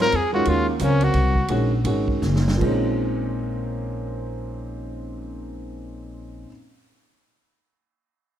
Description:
modal jazz; 152-178 BPM; 3/4; swing 62% on 8ths; Bb minor; A4 = 441 Hz
clear trumpet; melody; 0.0-1.5 s; Bb3 to Bb4; -23 LUFS; left 1 dB
warm concert grand piano; accompaniment; 0.0-6.5 s; Bb2 to F5; -26 LUFS; right 1 dB
upright bass; bass; 0.0-6.4 s; Gb1 to Ab2; -24 LUFS; equal
vintage drum kit; drums; 0.0-2.7 s; crash cymbal, hi-hat, kick drum, ride cymbal, snare drum; -30 LUFS; right 2 dB
light reverb; -20 LUFS; side -10 dB against mid
0.0-2.6 A section; 2.6-5.0 B section
trumpet solo 0.0-2.6; slowing down 0.5-2.6; drum fill 2.2-2.6
0.0 Ebm11; 2.6 Bbm11

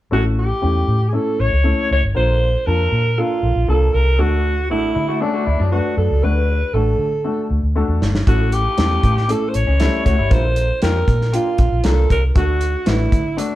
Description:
uptempo 1960s-style soul; 118 BPM; 4/4; straight; D major; A4 = 439 Hz
growling alto saxophone; melody; 0.1-13.6 s; D4 to C#5; -20 LUFS; right 2 dB
warm upright piano; accompaniment; 0.1-13.6 s; A3 to A5; -24 LUFS; left 4 dB
vintage muted fingered electric bass; bass; 0.1-13.4 s; G1 to D3; -18 LUFS; equal; tube saturation
electric guitar through a small old amp; riff; 5.0-6.3, 9.7-10.4 s; E3 to A4; -24 LUFS; left 3 dB
warm soul drum kit; drums; 8.0-13.5 s; hi-hat, kick drum, snare drum; -19 LUFS; equal
moderate stone room reverb, RT60 1.0 s; band playing live in one room, cassette tape; -15 LUFS; side -15 dB against mid
0.1-13.6 A section
drum fill 7.8-8.3
0.1 A; 2.2 Bb; 4.2 D; 8.3 A; 10.3 Bb; 12.4 D

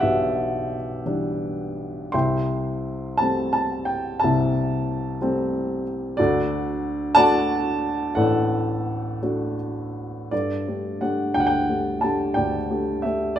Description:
classical, lyrical solo piano; 54-63 BPM (dotted quarters); 6/8; rubato; G major; A4 = 440 Hz
dark baby grand piano; solo; 0.0-13.4 s; A1 to C6; -21 LUFS; equal
moderate recital hall reverb, RT60 1.3 s; minimal, uncompressed stereo recording; -21 LUFS; side -10 dB against mid
0.0-10.3 A section; 10.3-13.4 B section
0.0 Em7/B; 2.1 Am7/C; 6.2 D; 10.3 Gsus2

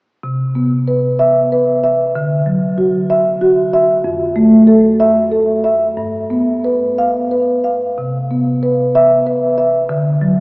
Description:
classical, contemporary piece for solo marimba; 94 BPM; 3/4; rubato; C major; A4 = 441 Hz
marimba with soft mallets; solo; 0.2-10.4 s; F2 to F5; -11 LUFS; equal
wet cathedral reverb, RT60 4.9 s; heard from further back in the room, small speaker sound; -11 LUFS; side -27 dB against mid
0.2-10.4 A section
0.2 Cmaj7; 2.2 Dadd9; 4.0 Fmaj7; 6.0 G7; 8.0 Cmaj7; 9.9 D

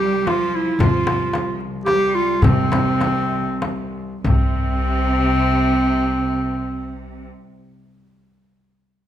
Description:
Arabic maqam ensemble; 91-114 BPM; 3/4; straight; A4 = 439 Hz
clear clarinet; melody; 0.0-7.3 s; C4 to G4; -20 LUFS; equal
bright studio cello section; second line; 0.0-7.3 s; C3 to G3; -25 LUFS; right 2 dB
upright bass; bass; 0.0-7.3 s; C2 to C3; -23 LUFS; equal
dark cello; drone; 0.0-7.3 s; C2; -29 LUFS; left 3 dB
darbuka; percussion; 0.0-4.6 s; -24 LUFS; left 2 dB
frame drum; percussion; 0.3-4.6 s; -26 LUFS; left 1 dB
moderate recital hall reverb, RT60 1.5 s; minimal, uncompressed stereo recording; -17 LUFS; side -11 dB against mid
0.0-4.2 A section; 4.2-8.2 B section
slowing down 0.8-4.2

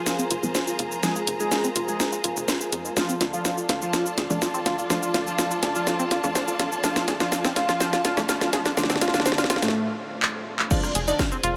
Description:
melodic techno; 124 BPM; 4/4; straight; A4 = 440 Hz
fat analog lead; melody; 0.0-11.3 s; A3 to Ab4; -33 LUFS; equal; analog chorus, sidechain pumping, digital delay
dark analog pad; sustained chords; 0.0-11.6 s; F4 to A5; -37 LUFS; equal; chorus, sidechain pumping
filtered dub chord stab; stabs; 0.0-11.6 s; F3 to D4; -37 LUFS; equal
warm studio string section; texture; 0.0-11.6 s; F4 to Bb5; -35 LUFS; equal; sidechain pumping
tight sequenced synth; arpeggios; 0.1-11.5 s; C4 to C5; -32 LUFS; equal; chorus, sidechain pumping, tape echo
house drum kit; drums; 0.1-11.5 s; crash cymbal, handclaps, hi-hat, rim click, shaker, snare drum; -28 LUFS; equal; sidechain pumping on perc, sidechain pumping on hats, sidechain pumping on cymbals
tight sequencer bass; bass; 0.3-11.6 s; D1 to F2; -37 LUFS; equal; sidechain pumping, high-pass filter
glassy wavetable pluck; second line; 10.7-11.3 s; D5; -33 LUFS; equal; chorus, sidechain pumping
electronic kick drum; drums; 10.7-11.3 s; -27 LUFS; equal
moderate huge ambient reverb, RT60 7.8 s; -24 LUFS; mono
0.0-10.7 A section
build-up 0.0-10.7; drum fill 0.0-9.7, 10.2-10.7; filter sweep on synth arpeggio sound 0.0-10.7; break 9.7-10.7
0.0 Fm; 3.0 Dm; 10.7 Fm

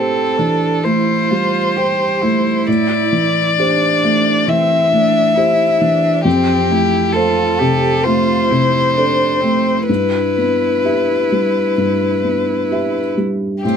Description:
neoclassical piano and strings; 66 BPM; 4/4; rubato; A minor; A4 = 442 Hz
rich violin; melody; 0.0-13.8 s; G4 to E5; -16 LUFS; left 3 dB
rich cello; second line; 0.0-13.8 s; C4 to G4; -22 LUFS; right 9 dB
felt-muted upright piano; accompaniment; 0.0-13.8 s; F2 to E5; -17 LUFS; equal
light reverb; -13 LUFS; side -7 dB against mid
0.0-13.8 A section
0.0 Am7; 6.3 F; 9.9 Em/G

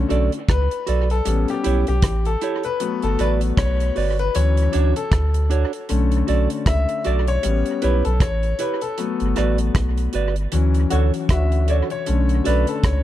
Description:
roots reggae; 78 BPM; 4/4; swing 58% on 16ths; A4 = 440 Hz
clear concert grand piano; stabs; 0.0-13.0 s; D3 to E5; -23 LUFS; left 6 dB
soft dub sub bass; bass; 0.0-13.0 s; G1 to D2; -19 LUFS; equal
mellow electric guitar; accompaniment; 0.1-12.7 s; D4 to D5; -27 LUFS; right 9 dB; tape echo
deep reggae drum kit; drums; 0.1-13.0 s; hi-hat, kick drum, rim click; -23 LUFS; equal; dub echo
mellow trombone section; second line; 10.9-11.9 s; D3 to F#4; -30 LUFS; left 4 dB; tape echo
small room ambience; dark, warm production; -18 LUFS; side -13 dB against mid
0.0-13.0 A section
grand piano solo 0.0-13.0; band accent 9.0-12.1
0.0 Bm7; 1.3 A7; 2.8 Gmaj7; 4.3 Dmaj7; 5.9 Bm7; 7.4 A7; 9.0 Gmaj7; 10.5 Dmaj7; 12.1 Bm7

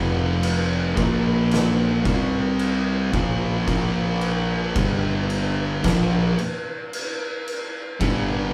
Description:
stoner and doom metal; 56 BPM; 4/4; straight; A4 = 440 Hz
thick fuzz guitar; riff; 0.0-8.5 s; F2 to C4; -27 LUFS; equal; distortion
thick fuzz guitar; riff; 0.0-8.5 s; F2 to C4; -27 LUFS; equal; distortion
fuzz picked electric bass; bass; 0.0-8.5 s; F1 to C2; -29 LUFS; equal; overdrive
oversized low-tuned drum kit; drums; 0.4-8.3 s; crash cymbal, kick drum, snare drum; -28 LUFS; equal
moderate small room reverb, RT60 0.5 s; band playing live in one room; -22 LUFS; mono
0.0-8.5 A section
0.0 F5; 1.0 Bb5; 2.1 C5; 3.1 Bb5; 4.8 G5; 5.8 Bb5; 8.0 G5

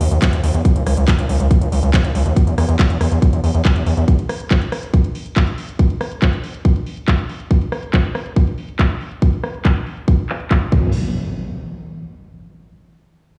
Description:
uplifting trance; 140 BPM; 4/4; straight; A4 = 440 Hz
gritty driven synth bass; bass; 0.0-4.0, 10.7-10.9 s; G#1 to E2; -18 LUFS; equal; sidechain pumping
house drum kit; drums; 0.0-10.8 s; crash cymbal, handclaps, hi-hat, rim click; -28 LUFS; equal; low-pass filter on hats, low-pass filter on snare, low-pass filter on cymbals, low-pass filter on room
electronic kick drum; drums; 0.2-10.8 s; -16 LUFS; equal
impact; sound effects; 10.7-12.4 s; -26 LUFS; equal
little or no reverb; played on a big sound system in a bare room, stone room reverb, small room ambience; -17 LUFS; mono
0.0-10.9 A section; 10.9-12.7 B section

